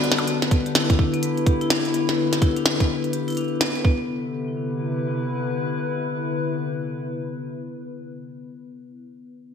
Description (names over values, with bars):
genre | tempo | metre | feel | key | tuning
IDM | 126 BPM | 4/4 | swing 62% on 16ths | C major | A4 = 440 Hz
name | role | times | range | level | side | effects
warbly tape-like pad | sustained chords | 0.0-8.7 s | C3 to A5 | -27 LUFS | left 2 dB | chorus, built-in reverb
vibraphone with hard mallets | arpeggios | 0.0-9.5 s | B3 to D5 | -27 LUFS | left 3 dB | low-pass filter, ping-pong delay
glitchy drum kit | drums | 0.0-3.8 s | hi-hat, percussion blips, snare drum | -23 LUFS | right 1 dB | gated reverb
electronic kick drum | drums | 0.5-4.0 s | none | -20 LUFS | right 1 dB | none
room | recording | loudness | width
wet lush hall reverb, RT60 1.8 s | bright 1980s-style digital production | -21 LUFS | side -7 dB against mid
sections
0.3-4.1 A section; 4.1-7.9 B section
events
break 0.0; drum fill 0.0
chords
0.3 G6/D; 3.8 Csus2; 4.1 Cmaj9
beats
| 0.27 0.75 1.23 1.70 | 2.18 2.65 3.13 3.61 | 4.08 4.56 5.04 5.51 | 5.99 6.46 6.94 7.42